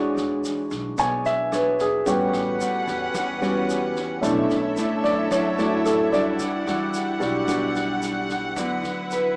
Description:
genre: bossa nova.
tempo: 111 BPM.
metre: 4/4.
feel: straight.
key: unclear.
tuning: A4 = 440 Hz.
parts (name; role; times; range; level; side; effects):
clear baby grand piano; accompaniment; 0.0-9.4 s; G3 to G#5; -23 LUFS; equal; none.
nylon-string guitar; accompaniment; 0.0-9.4 s; A2 to C#5; -27 LUFS; equal; none.
upright bass; bass; 0.0-9.1 s; A1 to F#2; -36 LUFS; equal; none.
swinging big-band drum kit; drums; 0.2-9.2 s; kick drum, rim click, snare drum; -36 LUFS; equal; none.
egg shaker; percussion; 0.2-9.4 s; none; -40 LUFS; equal; none.
warm studio string section; sustained chords; 2.1-9.4 s; G3 to F#5; -27 LUFS; equal; none.
room: wet small room reverb, RT60 0.5 s.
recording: rough home demo mix, small speaker sound.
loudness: -20 LUFS.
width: side -38 dB against mid.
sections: 0.0-9.4 A section.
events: grand piano solo 0.0-9.4.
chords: 0.0 E13; 2.1 A13; 4.2 Bm11; 6.4 Em9; 8.6 D69.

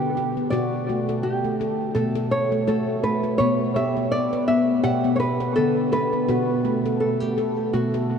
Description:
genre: world meditative, meditative tuned percussion.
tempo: 83 BPM.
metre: 4/4.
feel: swing 56% on 16ths.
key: unclear.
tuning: A4 = 440 Hz.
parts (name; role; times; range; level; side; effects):
nylon-string guitar; melody; 0.0-8.2 s; F#4 to F#5; -24 LUFS; equal; analog delay.
handpan; arpeggios; 0.0-8.2 s; B2 to B4; -22 LUFS; left 1 dB; analog delay.
room: wet huge ambient reverb, RT60 7.7 s.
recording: dreamy mix soaked in reverb.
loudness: -20 LUFS.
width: side -7 dB against mid.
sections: 0.0-8.2 A section.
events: none.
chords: 0.0 G; 0.5 D/B; 3.4 G/B; 6.3 A7sus2/B.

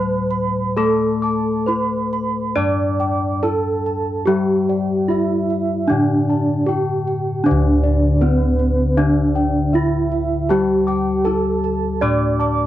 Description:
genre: Javanese gamelan.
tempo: 65-79 BPM.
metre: 4/4.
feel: straight.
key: D slendro.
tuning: A4 = 435 Hz.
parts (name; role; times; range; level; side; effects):
gamelan-type bronze metallophone; melody; 0.0-12.7 s; C4-40c to D5; -21 LUFS; right 2 dB; none.
gamelan-type bronze metallophone; accompaniment; 0.0-12.7 s; D3 to D4; -22 LUFS; left 6 dB; none.
gamelan-type bossed gongs; arpeggios; 0.0-12.7 s; C5-40c to D6; -29 LUFS; left 5 dB; none.
gamelan-type bronze metallophone; arpeggios; 0.0-12.7 s; C5-40c to D6; -27 LUFS; right 6 dB; none.
gamelan-type bossed gongs; bass; 0.0-12.7 s; D2 to A4+20c; -21 LUFS; right 1 dB; none.
room: light reverb.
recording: dry, close 1970s-style studio recording.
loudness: -16 LUFS.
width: side -13 dB against mid.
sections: 0.0-7.5 A section; 7.5-12.7 B section.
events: none.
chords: none.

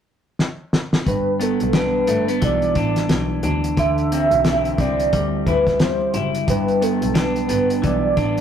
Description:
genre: indie pop, bedroom pop.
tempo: 89 BPM.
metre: 4/4.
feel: swing 60% on 16ths.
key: G major.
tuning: A4 = 443 Hz.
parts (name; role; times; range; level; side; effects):
cloth-damped thuddy drum kit; drums; 0.4-8.4 s; hi-hat, kick drum, snare drum; -21 LUFS; equal; none.
warm velvety synth lead; melody; 1.1-8.4 s; A4 to E5; -21 LUFS; right 2 dB; chorus.
electric guitar through a small old amp; accompaniment; 1.1-8.4 s; G2 to E4; -21 LUFS; equal; warbly pitch drift.
rich double bass; bass; 1.1-8.4 s; F#1 to D2; -26 LUFS; left 1 dB; none.
room: moderate studio reverb, RT60 0.6 s.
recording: rough rehearsal-room recording, tube saturation.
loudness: -17 LUFS.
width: side -8 dB against mid.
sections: 0.0-1.1 A section; 1.1-8.4 B section.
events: drum fill 0.4-1.1.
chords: 0.0 N.C.; 1.1 G6; 3.8 D9sus4; 6.5 G6.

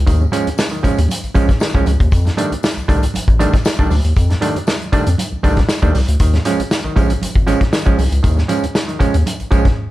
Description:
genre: funk.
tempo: 118 BPM.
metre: 4/4.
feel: straight.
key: unclear.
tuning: A4 = 440 Hz.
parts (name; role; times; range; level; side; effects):
round analog bass; bass; 0.0-9.7 s; Ab1 to F2; -16 LUFS; equal; none.
overdriven clav; stabs; 0.1-9.7 s; Eb3 to D4; -20 LUFS; right 3 dB; none.
vintage drum kit; drums; 0.1-9.8 s; hi-hat, kick drum, snare drum; -17 LUFS; equal; none.
congas; percussion; 0.1-9.6 s; none; -28 LUFS; right 3 dB; none.
tambourine; percussion; 0.1-9.6 s; none; -37 LUFS; left 9 dB; none.
room: light reverb.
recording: none.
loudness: -13 LUFS.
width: side -16 dB against mid.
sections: 0.0-9.9 A section.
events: none.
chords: 0.0 Eb9sus4; 2.1 F13; 6.2 Eb9sus4.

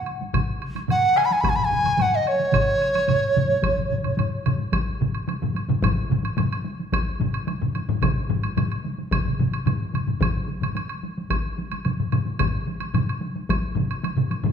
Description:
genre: japanese traditional, taiko drum ensemble.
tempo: 110 BPM.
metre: 4/4.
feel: straight.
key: C# suspended pentatonic.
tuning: A4 = 438 Hz.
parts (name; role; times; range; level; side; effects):
reedy large dizi; melody; 0.0-4.2 s; C#5 to B5; -20 LUFS; right 1 dB; none.
woodblock; percussion; 0.1-14.4 s; none; -33 LUFS; right 2 dB; none.
taiko ensemble; percussion; 0.2-14.5 s; none; -30 LUFS; right 1 dB; none.
solo taiko drums; percussion; 0.3-14.5 s; none; -28 LUFS; left 6 dB; none.
solo taiko drums; percussion; 0.3-13.6 s; none; -30 LUFS; left 2 dB; none.
taiko ensemble; percussion; 0.3-14.5 s; none; -27 LUFS; right 4 dB; none.
room: wet recital hall reverb, RT60 1.7 s.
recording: minimal, uncompressed stereo recording.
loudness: -21 LUFS.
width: side -8 dB against mid.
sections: 0.0-4.7 A section; 4.7-14.5 B section.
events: none.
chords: none.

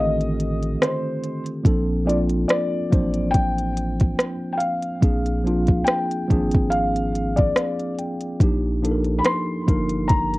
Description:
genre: lo-fi hip hop.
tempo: 71 BPM.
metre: 4/4.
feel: swing 55% on 16ths.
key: Bb major.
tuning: A4 = 441 Hz.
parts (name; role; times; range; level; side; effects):
felt-muted upright piano; melody; 0.0-10.4 s; C5 to C6; -26 LUFS; left 2 dB; low-pass filter, cassette tape, plate reverb.
mellow tine electric piano; accompaniment; 0.0-10.4 s; D3 to G5; -24 LUFS; equal; medium stereo tremolo, cassette tape, low-pass filter, plate reverb.
warm sub bass; bass; 0.0-10.4 s; G1 to Bb1; -26 LUFS; equal; none.
organic electronic drum kit; drums; 0.2-10.4 s; hi-hat, kick drum, rim click; -19 LUFS; equal; overdrive, cassette tape.
room: light reverb.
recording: home recording on cassette.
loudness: -19 LUFS.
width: side -20 dB against mid.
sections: 0.0-10.4 A section.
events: none.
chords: 0.0 F13; 1.6 Bbmaj9; 5.0 Bb7; 8.4 Ebmaj9/Bb.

